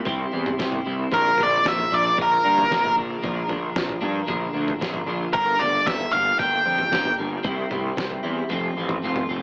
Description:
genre	quiet-loud alternative rock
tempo	114 BPM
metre	4/4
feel	straight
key	unclear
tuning	A4 = 440 Hz
part	twelve-string electric guitar	arpeggios	0.0-9.4 s	G2 to F4	-28 LUFS	equal	lush chorus, plate reverb, tape echo
part	fuzz picked electric bass	bass	0.1-9.4 s	F1 to G2	-28 LUFS	equal	overdrive
part	lo-fi sampler-style drum kit	drums	0.1-9.3 s	kick drum, snare drum, toms	-30 LUFS	equal	none
part	octave-fuzz lead guitar	melody	1.1-7.1 s	Bb4 to G5	-20 LUFS	equal	distortion, tape echo
room	moderate studio reverb, RT60 0.6 s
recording	small speaker sound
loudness	-20 LUFS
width	side -32 dB against mid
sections	0.0-9.4 A section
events	kick and snare drop out 8.5-9.4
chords	0.0 C; 1.1 Bb; 5.3 Gm; 7.4 C; 8.5 F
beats	0.06 0.58 | 1.11 1.64 2.17 2.69 | 3.22 3.75 4.27 4.80 | 5.33 5.86 6.38 6.91 | 7.44 7.96 8.49 9.02

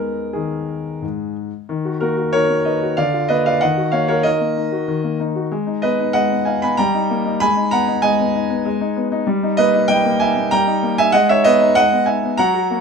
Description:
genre	classical-period piano sonatina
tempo	95 BPM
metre	3/4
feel	rubato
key	Eb minor, G# minor from 9.3 s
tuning	A4 = 440 Hz
part	warm concert grand piano	solo	0.0-12.8 s	G#2 to Cb6	-15 LUFS	equal	none
room	light reverb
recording	close, detailed microphones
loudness	-15 LUFS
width	side -5 dB against mid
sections	0.0-1.7 A section; 1.7-12.8 B section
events	none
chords	0.0 G#m; 1.7 Ebm; 3.0 Bb/D; 3.6 Ebm; 5.5 Abm; 6.8 Eb/G; 7.4 Abm; 9.3 D#/G; 11.1 G#m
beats	0.35 1.03 | 1.70 2.34 2.97 | 3.61 4.25 4.89 | 5.53 6.16 6.79 | 7.42 8.04 8.65 | 9.27 9.89 10.52 | 11.14 11.76 12.38

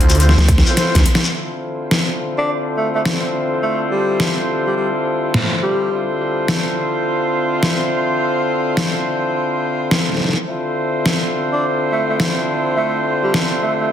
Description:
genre	glitch hop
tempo	105 BPM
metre	4/4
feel	swing 63% on 16ths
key	D minor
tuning	A4 = 440 Hz
part	mellow horn section	stabs	0.0-13.9 s	D3 to C5	-19 LUFS	left 1 dB	sidechain pumping, low-pass filter, tape echo
part	phased detuned saw bass	bass	0.0-1.0 s	D2	-13 LUFS	equal	phaser
part	dubstep drum kit	drums	0.0-13.5 s	hi-hat, snare drum	-18 LUFS	equal	overdrive
part	shekere	percussion	0.1-1.3 s	none	-25 LUFS	left 4 dB	none
part	rubbery square bass	bass	0.4-0.6 s	D2	-13 LUFS	equal	none
part	electronic kick drum	drums	0.5-1.0 s	none	-15 LUFS	equal	overdrive
part	breathy tenor saxophone	melody	2.4-6.1, 11.5-13.9 s	G3 to D4	-21 LUFS	equal	tape echo
room	moderate digital room reverb, RT60 1.2 s, digital ambience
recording	dense, heavily limited modern master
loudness	-15 LUFS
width	side -9 dB against mid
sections	0.0-1.3 A section; 1.3-13.9 B section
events	drum fill 0.2-1.3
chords	0.0 Dm7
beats	0.20 0.77 | 1.34 1.91 2.48 3.06 | 3.63 4.20 4.77 5.34 | 5.91 6.49 7.06 7.63 | 8.20 8.77 9.34 9.91 | 10.48 11.06 11.63 12.20 | 12.77 13.34 13.91

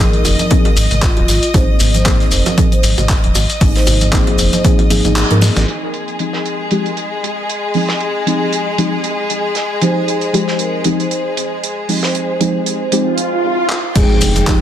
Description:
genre	deep house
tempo	116 BPM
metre	4/4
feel	swing 56% on 16ths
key	F minor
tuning	A4 = 439 Hz
part	vibraphone with soft mallets	melody	0.0-5.6, 9.8-14.6 s	F4 to C5	-23 LUFS	equal	tape echo
part	deep mellow chord stab	stabs	0.0-14.6 s	F3 to Bb4	-18 LUFS	equal	chorus, sidechain pumping, tape echo
part	sub bass with octave	bass	0.0-5.7, 14.0-14.6 s	Eb1 to Ab2	-16 LUFS	equal	sidechain pumping
part	modern studio drum kit	drums	0.0-14.6 s	hi-hat, snare drum	-24 LUFS	right 5 dB	sidechain pumping on hats, high-pass filter on hats, low-pass filter on hats, small room ambience, high-pass filter on snare, low-pass filter on snare, high-pass filter on room, low-pass filter on room
part	shekere	percussion	0.0-5.7, 14.0-14.6 s	none	-23 LUFS	left 3 dB	none
part	rich chamber violin section	texture	0.0-14.6 s	Ab3 to Eb6	-22 LUFS	left 2 dB	sidechain pumping
part	dusty soul sampler-style drum kit	drums	0.1-5.7, 13.7-14.6 s	crash cymbal, handclaps, hi-hat, snare drum	-20 LUFS	left 1 dB	low-pass filter on hats, small room ambience, low-pass filter on snare, low-pass filter on cymbals
part	bongos and congas	percussion	0.2-5.4, 14.0-14.6 s	none	-24 LUFS	right 2 dB	small room ambience
part	electronic kick drum	drums	0.5-4.8, 14.0-14.6 s	none	-14 LUFS	equal	small room ambience
part	swell and impact	sound effects	13.1-14.6 s	none	-18 LUFS	right 1 dB	none
room	moderate digital room reverb, RT60 1.2 s, small room ambience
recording	dense, heavily limited modern master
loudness	-12 LUFS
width	side -10 dB against mid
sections	0.0-5.7 A section; 5.7-14.0 B section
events	kick drops out 5.2-5.7; band accent 5.2; drum fill 5.4, 13.7; filter sweep on synth stab 5.7-14.0; swell 13.1-14.0; impact 14.0-14.6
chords	0.0 Ab69; 5.7 Fm9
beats	0.51 1.02 | 1.54 2.06 2.58 3.09 | 3.61 4.13 4.65 5.16 | 5.68 6.20 6.71 7.23 | 7.75 8.27 8.78 9.30 | 9.82 10.34 10.85 11.37 | 11.89 12.40 12.92 13.44 | 13.96 14.47

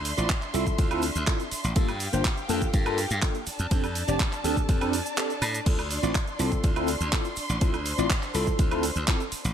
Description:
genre	filtered disco house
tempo	123 BPM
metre	4/4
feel	straight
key	D minor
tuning	A4 = 440 Hz
part	warm studio violin section	sustained chords	0.0-9.5 s	D4 to C6	-34 LUFS	equal	vintage 12-bit sampler grit, sidechain pumping
part	glassy slap bass	bass	0.0-9.5 s	F1 to A2	-30 LUFS	equal	sidechain pumping
part	house drum kit	drums	0.1-9.5 s	crash cymbal, handclaps, hi-hat, ride cymbal, shaker, woodblock	-32 LUFS	right 2 dB	sidechain pumping on hats, sidechain pumping on perc, sidechain pumping on cymbals
part	tube shaker	percussion	0.1-9.5 s	none	-41 LUFS	right 3 dB	none
part	tine electric piano	accompaniment	0.2-9.2 s	Bb3 to D5	-30 LUFS	equal	medium stereo tremolo, phaser, sidechain pumping
part	electronic kick drum	drums	0.3-9.2 s	none	-25 LUFS	equal	none
room	light reverb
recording	bright 1980s-style digital production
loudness	-24 LUFS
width	side -9 dB against mid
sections	0.0-9.5 A section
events	kick drops out 5.2-5.7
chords	0.0 Dm7; 1.8 Gm7; 3.5 F6; 5.7 Dm7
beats	0.30 0.79 1.27 | 1.76 2.25 2.74 3.23 | 3.71 4.20 4.69 5.18 | 5.66 6.15 6.64 7.13 | 7.62 8.10 8.59 9.08

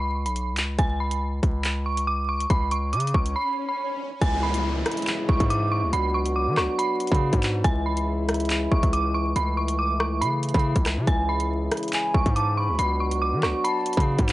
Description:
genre	hip hop, drill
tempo	140 BPM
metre	4/4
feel	half-time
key	unclear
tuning	A4 = 440 Hz
part	dark detuned synth bell	melody	0.0-14.3 s	G#5 to D6	-27 LUFS	right 2 dB	chorus, tremolo, low-pass filter
part	distorted 808-style bass	bass	0.0-14.3 s	B1 to E3	-26 LUFS	equal	distortion
part	drill drum kit	drums	0.3-14.3 s	handclaps, hi-hat, kick drum, rim click	-24 LUFS	equal	none
part	swell and downlifter	sound effects	2.9-7.6 s	none	-34 LUFS	left 1 dB	none
part	mellow French horn section	sustained chords	4.2-14.3 s	C#3 to F#4	-29 LUFS	left 1 dB	none
part	breathy mellow concert flute	second line	11.9-14.0 s	G#5 to B5	-31 LUFS	left 2 dB	analog delay
room	little or no reverb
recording	dry, gritty hardware recording, transformer saturation, vinyl crackle, nothing above 11.0 kHz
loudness	-21 LUFS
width	side -16 dB against mid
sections	0.0-4.2 A section; 4.2-14.3 B section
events	swell 2.9-4.2; break 3.4-4.2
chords	0.0 Bsus2; 0.8 Bsus2/C#; 4.2 C#m; 5.9 Bm/C#; 7.6 C#m; 9.4 B9sus4/C#; 11.1 C#m; 12.8 Bm/C#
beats	0.36 | 0.79 1.22 1.64 2.07 | 2.50 2.93 3.36 3.79 | 4.21 4.64 5.07 5.50 | 5.93 6.36 6.79 7.21 | 7.64 8.07 8.50 8.93 | 9.36 9.79 10.21 10.64 | 11.07 11.50 11.93 12.36 | 12.79 13.21 13.64 14.07

